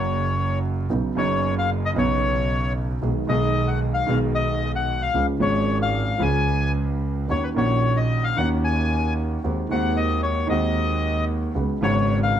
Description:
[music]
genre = tango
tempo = 113 BPM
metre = 4/4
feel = rubato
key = unclear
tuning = A4 = 444 Hz
[part]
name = bandoneon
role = melody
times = 0.0-12.4 s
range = B4 to G#5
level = -25 LUFS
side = left 5 dB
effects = none
[part]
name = clear concert grand piano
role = accompaniment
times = 0.0-12.4 s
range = F#1 to G#4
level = -24 LUFS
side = right 1 dB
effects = none
[part]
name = clear double bass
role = bass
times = 0.0-12.4 s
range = F#1 to D#2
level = -24 LUFS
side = right 1 dB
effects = none
[sound]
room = light reverb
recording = dark, warm production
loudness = -20 LUFS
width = side -9 dB against mid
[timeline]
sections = 0.0-12.4 A section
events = none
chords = 0.0 F#; 0.9 Badd9; 3.0 G#m/B; 5.1 C#; 7.3 D#m7; 9.4 G#7/D#; 11.6 C#7sus4

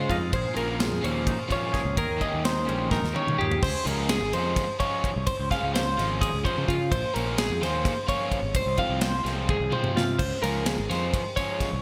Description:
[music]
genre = math rock and midwest emo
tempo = 255 BPM (eighths)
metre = 7/8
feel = straight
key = unclear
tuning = A4 = 440 Hz
[part]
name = twangy electric guitar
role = accompaniment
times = 0.0-5.3 s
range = Ab2 to Eb5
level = -37 LUFS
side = equal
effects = subtle chorus
[part]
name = twelve-string electric guitar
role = arpeggios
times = 0.0-11.8 s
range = F4 to F5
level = -31 LUFS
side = equal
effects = none
[part]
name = crunchy overdriven guitar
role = riff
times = 0.0-11.7 s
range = Db3 to G4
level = -34 LUFS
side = equal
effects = none
[part]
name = fuzz fingered electric bass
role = bass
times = 0.0-11.8 s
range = Ab1 to Eb3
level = -32 LUFS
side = equal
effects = overdrive
[part]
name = modern studio drum kit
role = drums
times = 0.1-11.7 s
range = crash cymbal, kick drum, ride cymbal, snare drum, splash cymbal, toms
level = -32 LUFS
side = equal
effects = gated reverb
[sound]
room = moderate lush hall reverb, RT60 2.0 s, small room ambience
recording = bright 1980s-style digital production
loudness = -26 LUFS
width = mono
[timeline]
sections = 0.0-3.6 A section; 3.6-11.8 B section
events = drum fill 2.9-3.6, 9.5-10.2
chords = 0.3 Bbm7; 2.0 Eb7sus4; 3.6 Dbmaj7; 6.9 Bbm7; 8.6 Fm/C; 10.2 Dbmaj7

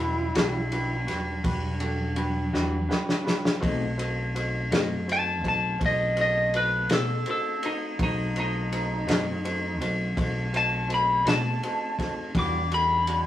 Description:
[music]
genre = slow blues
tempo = 55 BPM (dotted quarters)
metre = 12/8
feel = straight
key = unclear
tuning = A4 = 437 Hz
[part]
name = lightly driven lead guitar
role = melody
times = 0.0-13.3 s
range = D#4 to D6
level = -26 LUFS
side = left 1 dB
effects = none
[part]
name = bright upright piano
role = accompaniment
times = 0.0-13.3 s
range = D4 to B5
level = -35 LUFS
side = right 1 dB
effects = none
[part]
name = mellow tonewheel organ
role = sustained chords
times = 0.0-13.3 s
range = F#3 to F#5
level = -37 LUFS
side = equal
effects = slow rotary speaker
[part]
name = fingered electric bass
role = bass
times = 0.0-13.3 s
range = E1 to B2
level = -30 LUFS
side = equal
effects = none
[part]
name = clean electric guitar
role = accompaniment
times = 0.3-12.6 s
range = B2 to F#4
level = -32 LUFS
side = left 2 dB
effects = harmonic tremolo
[part]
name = vintage drum kit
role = drums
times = 0.4-13.2 s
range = kick drum, ride cymbal, snare drum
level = -29 LUFS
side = left 1 dB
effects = none
[sound]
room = moderate studio reverb, RT60 0.6 s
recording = rough rehearsal-room recording, small room ambience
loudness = -24 LUFS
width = side -12 dB against mid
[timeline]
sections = 0.0-13.3 A section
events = lead electric guitar solo 0.0-13.3; drum fill 2.5-3.6; upright piano fill 2.5-3.6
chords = 0.0 Em9; 3.6 B7b9; 12.4 Em9

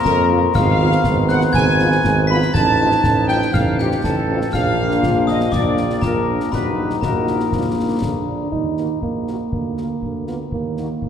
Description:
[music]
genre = military-style march for wind band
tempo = 120 BPM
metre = 2/4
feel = straight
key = Eb minor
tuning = A4 = 441 Hz
[part]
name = warm trumpet section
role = melody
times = 0.0-10.9 s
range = G4 to Cb6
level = -23 LUFS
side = equal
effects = none
[part]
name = bright small flute group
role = second line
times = 0.0-8.0 s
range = G4 to Cb6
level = -26 LUFS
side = right 1 dB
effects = none
[part]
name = glockenspiel with hard plastic mallets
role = second line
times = 0.0-8.0 s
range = G5 to Cb7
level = -25 LUFS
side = left 8 dB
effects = none
[part]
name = dark trombone section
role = sustained chords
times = 0.0-8.5 s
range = D3 to Eb4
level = -26 LUFS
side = right 2 dB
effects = none
[part]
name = warm tuba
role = bass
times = 0.1-11.1 s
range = Ab1 to F2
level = -21 LUFS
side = right 2 dB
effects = none
[part]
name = concert snare drum, concert bass drum and clash cymbals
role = drums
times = 0.1-11.1 s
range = none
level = -24 LUFS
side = equal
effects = none
[part]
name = warm French horn section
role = accompaniment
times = 0.3-10.9 s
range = Bb3 to Gb4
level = -24 LUFS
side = left 4 dB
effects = none
[part]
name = warm euphonium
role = second line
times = 8.3-11.1 s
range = Bb3 to Eb4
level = -24 LUFS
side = right 5 dB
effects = none
[sound]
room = wet concert hall reverb, RT60 2.1 s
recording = dark, warm production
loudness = -16 LUFS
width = side -8 dB against mid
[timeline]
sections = 0.0-8.5 A section; 8.5-11.1 B section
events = none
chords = 0.0 Bb5; 0.6 Fdim/Ab; 2.5 F7/A; 4.5 Bb; 6.5 Ebm/Bb; 7.5 Bb; 8.5 Ebm; 9.5 Bb/D; 10.5 Ebm

